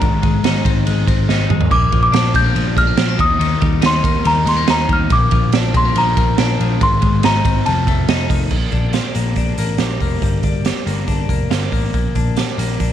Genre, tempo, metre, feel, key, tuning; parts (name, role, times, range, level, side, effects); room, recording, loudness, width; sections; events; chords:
jangly indie pop; 141 BPM; 4/4; straight; Bb mixolydian, Bb major from 8.5 s; A4 = 441 Hz
small celesta; melody; 0.0-8.3 s; A5 to G6; -18 LUFS; left 1 dB
twelve-string electric guitar; arpeggios; 0.0-12.9 s; F2 to G4; -22 LUFS; left 13 dB
picked electric bass; bass; 0.0-12.9 s; F1 to Eb2; -18 LUFS; equal
raw garage drum kit; drums; 0.0-12.9 s; crash cymbal, hi-hat, kick drum, ride cymbal, snare drum, splash cymbal, toms; -18 LUFS; right 3 dB
small room ambience; 1960s-style stereo; -13 LUFS; side -10 dB against mid
0.0-8.5 A section; 8.5-12.9 B section
drum fill 1.3-1.7
0.0 Ab; 1.7 Bb; 3.2 Eb; 5.1 Bb; 6.8 Ab; 7.7 F7; 8.5 Bb6